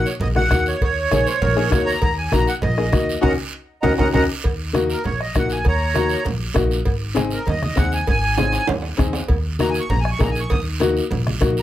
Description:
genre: latin, cumbia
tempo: 198 BPM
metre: 4/4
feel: straight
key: Eb dorian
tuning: A4 = 440 Hz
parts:
  - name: accordion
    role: melody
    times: 0.0-11.6 s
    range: Bb4 to Eb6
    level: -23 LUFS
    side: right 1 dB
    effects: light tremolo tuning, plate reverb
  - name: clear upright piano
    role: accompaniment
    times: 0.0-11.6 s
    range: Bb3 to Ab4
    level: -22 LUFS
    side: left 4 dB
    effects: none
  - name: upright bass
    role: bass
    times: 0.0-11.6 s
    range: Ab1 to Eb2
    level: -23 LUFS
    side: equal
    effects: none
  - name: guiro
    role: percussion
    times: 0.1-11.6 s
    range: none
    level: -33 LUFS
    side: right 6 dB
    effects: none
  - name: congas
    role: percussion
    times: 0.2-11.6 s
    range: none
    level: -27 LUFS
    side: right 2 dB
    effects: none
  - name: cowbell and timbales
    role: percussion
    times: 0.2-11.6 s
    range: none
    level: -30 LUFS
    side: right 5 dB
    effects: none
  - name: bombo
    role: percussion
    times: 0.4-11.6 s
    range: none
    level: -23 LUFS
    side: left 1 dB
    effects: none
  - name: mellow hollow silver concert flute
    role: second line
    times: 1.1-4.2 s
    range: Bb4 to Db5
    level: -24 LUFS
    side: right 4 dB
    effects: none
room: moderate studio reverb, RT60 0.5 s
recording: none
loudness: -17 LUFS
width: side -13 dB against mid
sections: 0.0-4.4 A section; 4.4-11.6 B section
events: band accent 3.2-4.4; drum fill 3.5-4.4, 8.4-9.3; upright piano fill 3.5-4.4; accordion solo 4.4-11.6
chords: 0.0 Ebm7; 4.4 Ebm; 6.9 Ab; 9.3 Ebm

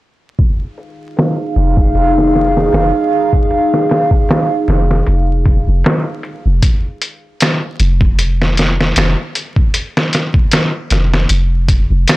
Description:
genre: trip hop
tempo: 77 BPM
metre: 4/4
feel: swing 55% on 16ths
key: F minor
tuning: A4 = 439 Hz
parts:
  - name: dark analog pad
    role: sustained chords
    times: 1.3-6.6 s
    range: Eb4 to F5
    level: -15 LUFS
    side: right 1 dB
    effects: chorus, phaser
  - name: trip hop sampler-style drum kit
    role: drums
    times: 0.4-12.2 s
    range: hi-hat, kick drum, snare drum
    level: -13 LUFS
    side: equal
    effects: low-pass filter on hats, small room ambience, low-pass filter on kick, soft clipping on snare, low-pass filter on snare
  - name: soft 808-style bass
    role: bass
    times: 1.6-12.1 s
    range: F1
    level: -14 LUFS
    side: equal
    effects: transformer saturation
room: digital ambience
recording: blown-out, overdriven recording, vinyl crackle, overdrive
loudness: -11 LUFS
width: side -18 dB against mid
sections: 0.4-6.6 A section; 6.6-12.2 B section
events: none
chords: 0.4 Fm7; 6.6 F5

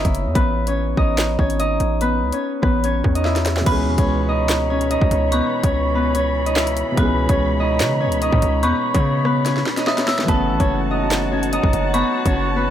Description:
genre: hip hop, drill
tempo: 145 BPM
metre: 4/4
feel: half-time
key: C# minor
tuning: A4 = 440 Hz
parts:
  - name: Celtic harp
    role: melody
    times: 0.0-12.7 s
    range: B3 to E5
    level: -20 LUFS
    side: left 1 dB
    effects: digital delay
  - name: distorted 808-style bass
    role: bass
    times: 0.0-12.7 s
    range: F#1 to C#3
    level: -22 LUFS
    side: equal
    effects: distortion
  - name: drill drum kit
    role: drums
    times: 0.0-12.3 s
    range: crash cymbal, handclaps, hi-hat, kick drum, rim click, snare drum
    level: -21 LUFS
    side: equal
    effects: none
  - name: warm baby grand piano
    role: accompaniment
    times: 3.6-12.7 s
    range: B2 to G#4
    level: -27 LUFS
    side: right 1 dB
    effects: none
  - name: dark detuned synth bell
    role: second line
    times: 3.7-12.7 s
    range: A5 to E6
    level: -27 LUFS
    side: right 1 dB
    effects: chorus, phaser, digital delay
  - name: muted studio string section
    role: sustained chords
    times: 3.7-12.7 s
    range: E3 to B5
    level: -29 LUFS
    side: left 1 dB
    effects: none
room: light reverb, small room ambience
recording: none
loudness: -16 LUFS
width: side -10 dB against mid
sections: 0.0-3.7 A section; 3.7-12.7 B section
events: drum fill 3.2-3.7, 9.5-10.3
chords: 0.4 A; 3.7 C#m7; 10.3 F#m7

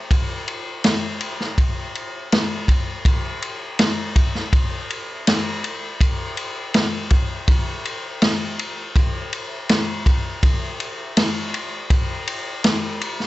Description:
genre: rock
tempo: 81 BPM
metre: 4/4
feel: straight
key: none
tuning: none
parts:
  - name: vintage drum kit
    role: drums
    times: 0.1-13.3 s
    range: kick drum, ride cymbal, snare drum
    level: -19 LUFS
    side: equal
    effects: none
room: little or no reverb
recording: nothing above 8.0 kHz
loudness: -19 LUFS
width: side -17 dB against mid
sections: 0.0-13.3 A section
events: none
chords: none

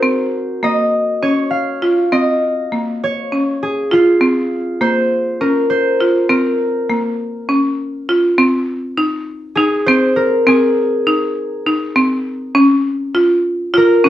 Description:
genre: progressive instrumental, progressive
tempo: 201 BPM (eighths)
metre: 7/8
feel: straight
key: Bb minor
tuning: A4 = 440 Hz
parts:
  - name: concert harp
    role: melody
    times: 0.0-14.1 s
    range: F4 to F5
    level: -16 LUFS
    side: equal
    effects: plate reverb
  - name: buzzing marimba with hard mallets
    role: arpeggios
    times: 0.0-14.1 s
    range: Bb3 to F4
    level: -15 LUFS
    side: equal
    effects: none
room: wet studio reverb, RT60 0.6 s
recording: heard from further back in the room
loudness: -13 LUFS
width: side -12 dB against mid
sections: 0.0-8.4 A section; 8.4-14.1 B section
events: none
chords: 0.0 Bbmadd9; 8.4 Cm7; 12.6 Db6

